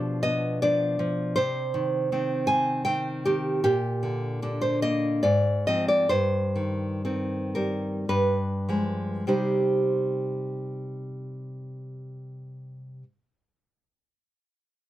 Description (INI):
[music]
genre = romantic piece for solo classical guitar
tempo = 47-83 BPM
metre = 3/4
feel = rubato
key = C minor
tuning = A4 = 440 Hz
[part]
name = nylon-string guitar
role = solo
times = 0.0-13.0 s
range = G2 to Ab5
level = -24 LUFS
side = equal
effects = none
[sound]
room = little or no reverb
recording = close, detailed microphones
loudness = -23 LUFS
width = side -14 dB against mid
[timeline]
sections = 0.0-9.3 A section; 9.3-12.8 B section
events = slowing down 2.5-9.3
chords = 0.0 G7/B; 1.4 Cm; 3.6 Gm/Bb; 5.2 Fm/Ab; 6.1 Cm/G; 8.1 G7b9; 9.3 Cm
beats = 0.64 | 1.38 2.11 2.86 | 3.63 4.42 5.24 | 6.09 7.02 8.07 | 9.28 10.43 11.61